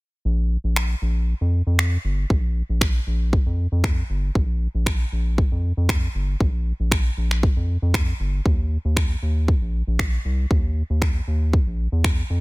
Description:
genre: dance-pop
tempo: 117 BPM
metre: 4/4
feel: straight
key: unclear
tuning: A4 = 440 Hz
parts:
  - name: round analog bass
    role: bass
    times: 0.3-12.4 s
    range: G1 to F2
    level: -21 LUFS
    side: equal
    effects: sidechain pumping
  - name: pop drum kit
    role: drums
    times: 0.8-12.2 s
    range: finger snaps, kick drum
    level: -21 LUFS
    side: equal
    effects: soft clipping on snare
room: little or no reverb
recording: dense, heavily limited modern master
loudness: -19 LUFS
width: side -24 dB against mid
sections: 0.3-12.4 A section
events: none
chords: none

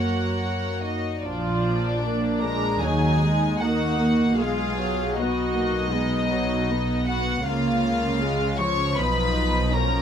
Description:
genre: classical, slow romantic movement for string orchestra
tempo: 69-80 BPM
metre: 4/4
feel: rubato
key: unclear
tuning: A4 = 440 Hz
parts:
  - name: warm studio violin section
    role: melody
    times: 0.0-10.0 s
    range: D5 to C#6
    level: -29 LUFS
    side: left 1 dB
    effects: none
  - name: rich studio violin section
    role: second line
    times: 0.0-10.0 s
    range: D4 to C#5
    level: -31 LUFS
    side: left 3 dB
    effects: none
  - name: warm studio viola section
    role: accompaniment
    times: 0.0-10.0 s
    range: E#3 to G#4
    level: -25 LUFS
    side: right 1 dB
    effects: none
  - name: warm studio cello section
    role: bass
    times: 0.0-10.0 s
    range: F#2 to D#3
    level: -29 LUFS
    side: right 1 dB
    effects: none
  - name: warm studio double bass section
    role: bass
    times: 1.2-10.0 s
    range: A#1 to D#2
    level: -28 LUFS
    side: right 1 dB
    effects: none
room: little or no reverb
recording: close, detailed microphones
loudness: -21 LUFS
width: side -8 dB against mid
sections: 0.0-1.2 A section; 1.2-10.0 B section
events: none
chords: 0.0 F#; 1.2 A#7; 2.8 D#m; 4.4 B; 7.4 C#; 9.0 C#7/B

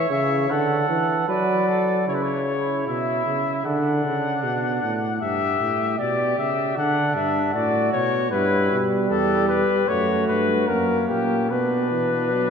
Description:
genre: classical, imitative canzona for brass ensemble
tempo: 77 BPM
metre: 4/4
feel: straight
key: D major, B minor from 8.3 s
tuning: A4 = 441 Hz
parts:
  - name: mellow trumpet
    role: melody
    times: 0.0-12.5 s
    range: G4 to F#5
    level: -23 LUFS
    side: left 6 dB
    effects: none
  - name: mellow trumpet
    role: second line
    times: 0.0-12.5 s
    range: C#4 to C#5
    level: -27 LUFS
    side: right 5 dB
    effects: none
  - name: mellow trombone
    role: accompaniment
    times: 0.0-2.1, 8.3-12.5 s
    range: C#3 to B3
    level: -23 LUFS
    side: right 2 dB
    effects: none
  - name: warm bass trombone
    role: bass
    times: 2.1-12.5 s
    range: E2 to D3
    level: -26 LUFS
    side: right 2 dB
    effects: none
room: wet church reverb, RT60 3.0 s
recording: minimal, uncompressed stereo recording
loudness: -19 LUFS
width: side -6 dB against mid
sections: 0.0-2.1 A section; 2.1-12.5 B section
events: none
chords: 0.0 A (rootless); 0.5 D; 2.1 Bsus24; 3.7 D; 5.2 G; 6.8 D; 8.3 Em/G; 9.9 B5/F#; 10.7 F#; 11.5 Bm

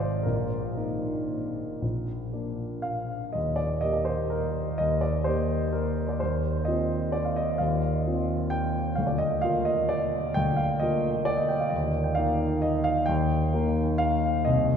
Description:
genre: classical, piano waltz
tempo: 112-138 BPM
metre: 3/4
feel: rubato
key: Eb major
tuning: A4 = 440 Hz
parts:
  - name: warm grand piano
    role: solo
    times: 0.0-14.8 s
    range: Ab1 to G5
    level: -24 LUFS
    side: equal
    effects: none
room: wet cathedral reverb, RT60 5.4 s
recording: heard from further back in the room, nothing above 10.5 kHz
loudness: -24 LUFS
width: side -7 dB against mid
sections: 0.0-3.4 A section; 3.4-14.8 A section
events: none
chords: 0.3 Eb5/Bb; 1.8 Bb; 3.4 Eb; 6.2 F5/Eb; 9.0 Bb/D; 11.7 Eb

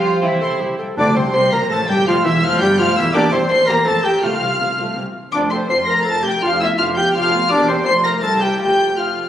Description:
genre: quick classical-period movement for symphony orchestra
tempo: 165 BPM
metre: 3/4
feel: straight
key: F major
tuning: A4 = 440 Hz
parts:
  - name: warm chamber violin section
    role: melody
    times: 0.0-9.3 s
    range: E5 to C7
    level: -21 LUFS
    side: left 2 dB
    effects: none
  - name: mellow clarinet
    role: second line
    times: 0.0-9.3 s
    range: C4 to C5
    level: -21 LUFS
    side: equal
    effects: none
  - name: silver concert flute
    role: second line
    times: 0.0-9.3 s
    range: C5 to C6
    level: -24 LUFS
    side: equal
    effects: none
  - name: warm chamber violin section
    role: second line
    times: 0.0-9.3 s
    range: E4 to C6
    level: -22 LUFS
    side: left 1 dB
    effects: none
  - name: warm bassoon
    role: accompaniment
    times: 0.0-0.8 s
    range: C4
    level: -27 LUFS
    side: right 1 dB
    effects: none
  - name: warm chamber viola section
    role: accompaniment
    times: 0.0-9.3 s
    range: C3 to A4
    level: -25 LUFS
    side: equal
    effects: none
  - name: mellow French horn section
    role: sustained chords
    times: 0.0-9.3 s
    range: G3 to C5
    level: -24 LUFS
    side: equal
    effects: none
  - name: dark trumpet section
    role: stabs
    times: 0.0-0.8 s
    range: C5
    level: -26 LUFS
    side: right 5 dB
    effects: none
  - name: dark chamber cello section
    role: bass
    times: 0.0-9.3 s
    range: C2 to F3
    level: -26 LUFS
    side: right 2 dB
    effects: none
  - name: warm chamber double bass section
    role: bass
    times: 0.2-9.3 s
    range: E1 to D2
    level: -26 LUFS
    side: equal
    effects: none
  - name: timpani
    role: percussion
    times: 1.0-1.5, 4.2-4.7 s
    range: F2 to C3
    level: -31 LUFS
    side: left 2 dB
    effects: none
room: wet scoring stage reverb, RT60 1.7 s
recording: recorded on a phone in the room, club reverb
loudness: -14 LUFS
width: side -10 dB against mid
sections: 1.0-9.3 A section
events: none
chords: 0.0 C; 1.0 Bbmaj13; 2.1 Fsus2; 3.1 C7/E; 3.9 F; 4.2 F/C; 5.0 N.C.; 5.3 F; 6.4 G7/F; 7.5 C7/E; 7.9 F; 8.2 C; 8.6 F

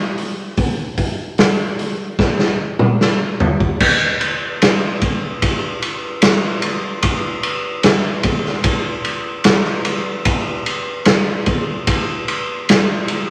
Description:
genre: rock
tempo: 74 BPM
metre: 4/4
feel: straight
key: none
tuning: none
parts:
  - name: raw garage drum kit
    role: drums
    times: 0.2-13.3 s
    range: crash cymbal, hi-hat, kick drum, ride cymbal, snare drum, toms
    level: -18 LUFS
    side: equal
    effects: none
room: light reverb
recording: none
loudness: -18 LUFS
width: mono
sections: 0.0-3.8 A section; 3.8-13.3 B section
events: drum fill 2.2-3.8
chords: none

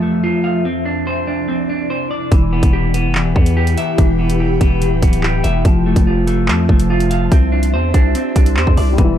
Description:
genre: hip hop, drill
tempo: 144 BPM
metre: 4/4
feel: half-time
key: E phrygian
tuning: A4 = 440 Hz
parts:
  - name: ethereal airy pad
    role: sustained chords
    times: 0.0-9.2 s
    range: C2 to C6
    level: -23 LUFS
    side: left 1 dB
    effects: ensemble chorus, built-in reverb, phaser
  - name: semi-hollow electric guitar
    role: arpeggios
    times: 0.0-9.2 s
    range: E3 to F5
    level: -18 LUFS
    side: equal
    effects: ping-pong delay
  - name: growling 808-style bass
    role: bass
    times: 2.3-9.2 s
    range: D1 to F2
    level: -17 LUFS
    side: equal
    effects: none
  - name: drill drum kit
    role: drums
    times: 2.3-9.1 s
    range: handclaps, hi-hat, kick drum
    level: -14 LUFS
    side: equal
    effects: none
  - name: dark concert grand piano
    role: accompaniment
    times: 8.9-9.2 s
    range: G3 to E4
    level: -17 LUFS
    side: left 8 dB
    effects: none
room: digital ambience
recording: dark, warm production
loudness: -13 LUFS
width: side -10 dB against mid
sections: 0.0-2.3 A section; 2.3-9.2 B section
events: none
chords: 0.0 Fmaj7; 0.7 Cadd9; 2.3 Em; 5.7 Fmaj7; 7.3 Cadd9

